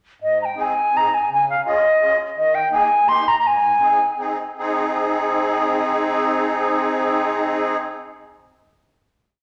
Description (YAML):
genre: alpine folk, alpine dance band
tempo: 148-168 BPM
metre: 3/4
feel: straight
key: Ab major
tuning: A4 = 440 Hz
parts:
  - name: mellow wooden flute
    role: melody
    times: 0.2-4.2 s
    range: Eb5 to C6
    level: -18 LUFS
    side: equal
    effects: none
  - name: musette accordion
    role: accompaniment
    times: 0.2-7.8 s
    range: Ab2 to Ab4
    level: -24 LUFS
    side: equal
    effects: none
room: wet large studio reverb, RT60 1.4 s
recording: none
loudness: -19 LUFS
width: mono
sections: 0.2-4.6 A section; 4.6-7.0 final chord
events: slowing down 2.4-4.6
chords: 0.2 Ab; 1.3 Dbadd9; 2.4 Ebsus4; 3.1 Eb; 3.4 Ab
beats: | 0.20 0.56 0.93 | 1.29 1.65 2.01 | 2.36 2.72 3.08 | 3.44 3.82 4.21 | 4.61 5.01 5.42 | 5.82 6.22 6.62